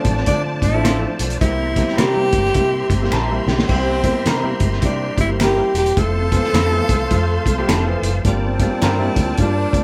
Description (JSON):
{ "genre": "uptempo 1960s-style soul", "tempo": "105 BPM", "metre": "4/4", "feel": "swing 61% on 8ths", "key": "unclear", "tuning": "A4 = 437 Hz", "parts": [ { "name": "breathy tenor saxophone", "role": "melody", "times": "0.0-9.8 s", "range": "C4 to A4", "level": "-23 LUFS", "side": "equal", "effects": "none" }, { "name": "warm studio string section", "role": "second line", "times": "0.0-9.8 s", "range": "D4 to C6", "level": "-30 LUFS", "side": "equal", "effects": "none" }, { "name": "clear grand piano", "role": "accompaniment", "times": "0.0-9.8 s", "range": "E3 to A5", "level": "-28 LUFS", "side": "equal", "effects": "none" }, { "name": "percussive tonewheel organ", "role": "sustained chords", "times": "0.0-9.8 s", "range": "F3 to Bb5", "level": "-33 LUFS", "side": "equal", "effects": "slow rotary speaker, chorus vibrato" }, { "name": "vintage muted fingered electric bass", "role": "bass", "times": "0.0-9.8 s", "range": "E1 to D3", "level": "-24 LUFS", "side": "equal", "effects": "none" }, { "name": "cloth-damped thuddy drum kit", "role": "drums", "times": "0.0-9.8 s", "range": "hi-hat, kick drum, snare drum, splash cymbal", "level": "-23 LUFS", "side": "equal", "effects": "none" }, { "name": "congas", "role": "percussion", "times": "0.3-9.8 s", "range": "none", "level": "-34 LUFS", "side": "equal", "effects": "none" }, { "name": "electric guitar through a small old amp", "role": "stabs", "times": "0.8-9.0 s", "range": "C4 to Bb4", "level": "-28 LUFS", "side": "equal", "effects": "phaser" }, { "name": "finger snaps", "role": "percussion", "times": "0.8-9.0 s", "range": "none", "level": "-31 LUFS", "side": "equal", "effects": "none" } ], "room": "light reverb", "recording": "band playing live in one room", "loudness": "-18 LUFS", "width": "mono", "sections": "0.0-9.8 A section", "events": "grand piano fill 2.8-3.7; drum fill 3.1-3.7", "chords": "0.0 Dm7; 1.4 C7; 6.0 Fmaj7; 8.2 Gm7", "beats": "0.28 0.85 | 1.42 1.99 2.55 3.12 | 3.69 4.26 4.83 5.40 | 5.97 6.54 7.11 7.68 | 8.25 8.82 9.39" }